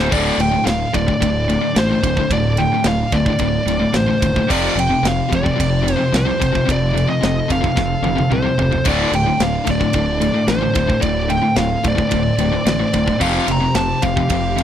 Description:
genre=heavy metal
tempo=110 BPM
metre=4/4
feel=straight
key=D minor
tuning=A4 = 440 Hz
part: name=high-gain lead guitar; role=melody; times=0.0-14.6 s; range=C5 to Bb5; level=-20 LUFS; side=equal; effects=distortion, slapback echo
part: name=rich studio string section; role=sustained chords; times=0.0-14.6 s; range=D3 to A4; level=-31 LUFS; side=equal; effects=none
part: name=distorted electric guitar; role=riff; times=0.0-14.6 s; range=D2 to F3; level=-21 LUFS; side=left 9 dB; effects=overdrive
part: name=distorted electric guitar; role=riff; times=0.0-14.6 s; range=D2 to F3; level=-22 LUFS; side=right 9 dB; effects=distortion
part: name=fuzz fingered electric bass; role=bass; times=0.0-14.6 s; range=D1 to C2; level=-22 LUFS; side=right 1 dB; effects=overdrive
part: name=tight metal drum kit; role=drums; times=0.1-14.6 s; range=crash cymbal, kick drum, ride cymbal, snare drum, toms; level=-23 LUFS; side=right 1 dB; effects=none
room=little or no reverb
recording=dry, close 1970s-style studio recording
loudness=-15 LUFS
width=side -10 dB against mid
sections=0.1-14.6 A section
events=drum fill 7.8-8.9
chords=0.1 D5; 4.5 F; 8.9 D5; 13.2 F5

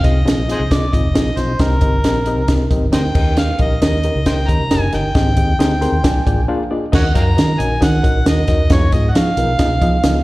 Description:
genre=uptempo 1960s-style soul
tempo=135 BPM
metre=4/4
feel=straight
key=Eb minor from 6.9 s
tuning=A4 = 440 Hz
part: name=overdriven harmonica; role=melody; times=0.0-10.2 s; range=Ab4 to Bb5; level=-22 LUFS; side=equal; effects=slapback echo
part: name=reed electric piano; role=accompaniment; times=0.0-10.2 s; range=Bb3 to C6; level=-21 LUFS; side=left 1 dB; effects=fast tremolo, slapback echo
part: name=vintage muted fingered electric bass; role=bass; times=0.0-10.2 s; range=F1 to F3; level=-18 LUFS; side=equal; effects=tube saturation
part: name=compact cocktail drum kit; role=drums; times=0.0-10.1 s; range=crash cymbal, hi-hat, kick drum, snare drum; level=-16 LUFS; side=equal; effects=none
room=light reverb, small room ambience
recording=live gig heard through the venue's PA, recital hall reverb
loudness=-13 LUFS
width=side -19 dB against mid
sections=0.0-6.9 A section; 6.9-10.2 B section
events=reed electric piano fill 5.6-6.9; break 6.5-6.9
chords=0.0 Fm7; 1.6 Cm7; 3.2 Eb7; 5.2 Abmaj7; 6.0 Bb7; 6.9 Ebm7; 8.7 Fm7b5

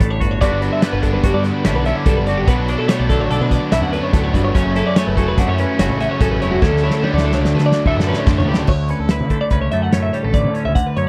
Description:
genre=math rock and midwest emo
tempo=145 BPM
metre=5/4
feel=straight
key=D major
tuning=A4 = 438 Hz
part: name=twelve-string electric guitar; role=accompaniment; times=0.0-11.1 s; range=D2 to A4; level=-23 LUFS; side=equal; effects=spring reverb
part: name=twelve-string electric guitar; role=arpeggios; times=0.0-11.1 s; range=F#4 to F#5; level=-24 LUFS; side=equal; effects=none
part: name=growling picked electric bass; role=bass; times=0.0-11.0 s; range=E1 to D3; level=-22 LUFS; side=equal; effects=overdrive
part: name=loose indie drum kit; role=drums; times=0.0-11.1 s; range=crash cymbal, hi-hat, kick drum, snare drum, toms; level=-19 LUFS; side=equal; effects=none
part: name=overdriven electric guitar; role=riff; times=0.4-8.7 s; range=F#2 to D4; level=-25 LUFS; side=equal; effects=none
room=little or no reverb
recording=dry, close 1970s-style studio recording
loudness=-17 LUFS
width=mono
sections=0.0-8.7 A section; 8.7-11.1 B section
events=drum fill 6.6-8.7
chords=0.4 Gmaj7#11; 2.5 Bm9; 4.6 F#m7; 6.6 Dmaj7

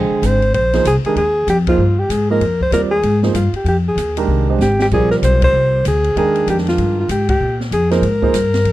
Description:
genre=modal jazz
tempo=192 BPM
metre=4/4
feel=swing 62% on 8ths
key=Bb mixolydian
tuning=A4 = 440 Hz
part: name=mellow alto saxophone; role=melody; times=0.0-8.7 s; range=F4 to C5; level=-16 LUFS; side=equal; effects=none
part: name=warm grand piano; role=accompaniment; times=0.0-8.3 s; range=D3 to G5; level=-20 LUFS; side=right 6 dB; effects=none
part: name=upright bass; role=bass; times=0.0-8.7 s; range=Ab1 to Bb2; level=-17 LUFS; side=left 1 dB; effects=none
part: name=open jazz drum kit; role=drums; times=0.2-8.7 s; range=crash cymbal, hi-hat, kick drum, ride cymbal, snare drum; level=-25 LUFS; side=left 1 dB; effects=none
room=little or no reverb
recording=dry, close 1970s-style studio recording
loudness=-13 LUFS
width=side -15 dB against mid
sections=0.0-8.7 A section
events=band accent 1.6, 5.4, 7.2; drum fill 4.6-4.9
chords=0.0 Bb9sus4

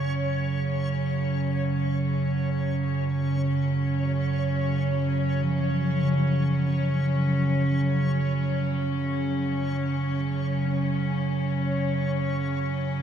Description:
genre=dark ambient drone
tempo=free time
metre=none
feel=none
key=unclear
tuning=A4 = 440 Hz
part: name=warm studio cello section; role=sustained chords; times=0.0-13.0 s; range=C#3 to C#4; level=-29 LUFS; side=left 3 dB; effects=shimmer reverb
part: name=deep rumbling drone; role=drone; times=0.0-13.0 s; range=F#2 to C#3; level=-25 LUFS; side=right 2 dB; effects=built-in reverb
part: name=backwards swelling texture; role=texture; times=0.0-13.0 s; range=C#5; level=-35 LUFS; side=left 1 dB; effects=built-in reverb, shimmer reverb
part: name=gamelan-type bossed gongs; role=arpeggios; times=5.4-13.0 s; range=C#3 to E#3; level=-32 LUFS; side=left 1 dB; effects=none
room=wet cathedral reverb, RT60 7.0 s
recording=dark, warm production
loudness=-23 LUFS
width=side -8 dB against mid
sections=0.0-13.0 A section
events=none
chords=0.0 F#5

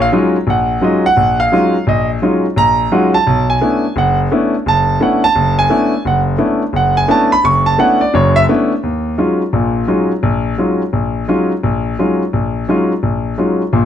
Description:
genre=jazz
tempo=172 BPM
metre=4/4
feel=swing 62% on 8ths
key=unclear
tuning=A4 = 442 Hz
part: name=clear concert grand piano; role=solo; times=0.0-13.9 s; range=F#1 to C#6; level=-12 LUFS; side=equal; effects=none
room=light reverb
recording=close, detailed microphones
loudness=-12 LUFS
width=side -9 dB against mid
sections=0.0-8.8 A section; 8.8-13.9 B section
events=none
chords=0.0 Ebm11; 3.3 Bm11; 8.8 Ebm11

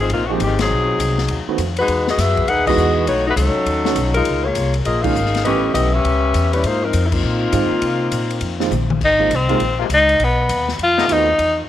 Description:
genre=jazz, big band swing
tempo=202 BPM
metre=4/4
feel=swing 63% on 8ths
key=unclear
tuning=A4 = 438 Hz
part: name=mellow saxophone section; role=melody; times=0.0-8.7 s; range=Eb3 to F#5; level=-18 LUFS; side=left 2 dB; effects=none
part: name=upright bass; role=bass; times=0.0-11.7 s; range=Ab1 to C3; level=-21 LUFS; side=left 1 dB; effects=none
part: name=swinging big-band drum kit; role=drums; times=0.1-11.5 s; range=crash cymbal, hi-hat, kick drum, ride cymbal, snare drum, toms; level=-26 LUFS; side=left 5 dB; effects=none
part: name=warm grand piano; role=accompaniment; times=0.3-11.3 s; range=D#3 to Ab4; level=-24 LUFS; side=right 9 dB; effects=none
part: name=clear tenor saxophone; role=melody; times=9.0-11.6 s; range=B3 to F4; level=-15 LUFS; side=left 1 dB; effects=none
part: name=bright trombone section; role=sustained chords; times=9.5-11.1 s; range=C3 to F4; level=-27 LUFS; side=left 9 dB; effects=none
room=light reverb, small room ambience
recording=1960s-style stereo with parts hard left and right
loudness=-15 LUFS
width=side -12 dB against mid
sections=0.0-9.0 A section; 9.0-11.7 B section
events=band accent 0.6, 2.6, 5.0, 7.1; drum fill 8.7; tenor saxophone solo 9.0-11.7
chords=0.0 Ab69; 0.7 B(b9); 1.9 Emaj9; 3.1 B9; 4.3 Db69; 5.5 A9; 6.6 Ab69; 10.2 B7b9

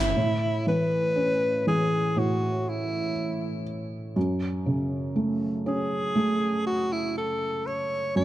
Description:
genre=pop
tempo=60 BPM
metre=4/4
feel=straight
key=A major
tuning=A4 = 440 Hz
part: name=clear alto saxophone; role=melody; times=0.0-8.2 s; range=E4 to D5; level=-27 LUFS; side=equal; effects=ping-pong delay
part: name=felt-muted upright piano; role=accompaniment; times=0.0-8.2 s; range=F#2 to E4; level=-27 LUFS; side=right 1 dB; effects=none
room=light reverb, small room ambience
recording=dark, warm production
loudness=-24 LUFS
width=side -14 dB against mid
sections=0.2-8.2 A section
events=none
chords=0.2 Aadd9; 4.2 F#m

